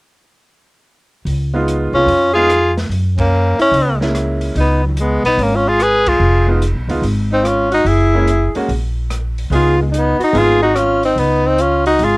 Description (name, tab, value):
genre	jazz, small-group swing and bop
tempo	145 BPM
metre	4/4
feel	swing 66% on 8ths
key	Db mixolydian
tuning	A4 = 439 Hz
part	upright bass	bass	1.3-12.2 s	F1 to Gb2	-17 LUFS	equal	none
part	open jazz drum kit	drums	1.3-12.1 s	hi-hat, kick drum, ride cymbal, rim click, snare drum	-29 LUFS	equal	cassette tape
part	bright upright piano	accompaniment	1.5-10.6 s	Ab3 to Gb4	-20 LUFS	right 1 dB	none
part	clear tenor saxophone	melody	1.9-12.2 s	Eb3 to Ab4	-14 LUFS	left 1 dB	cassette tape
part	clear alto saxophone	second line	2.0-12.2 s	Gb3 to Cb5	-18 LUFS	right 1 dB	none
room	light reverb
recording	home recording on cassette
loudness	-12 LUFS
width	side -24 dB against mid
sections	1.3-12.2 A section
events	band accent 3.1, 6.0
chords	1.3 Db9; 2.9 Gb9; 4.6 Db9; 7.9 Gb9; 9.5 Db9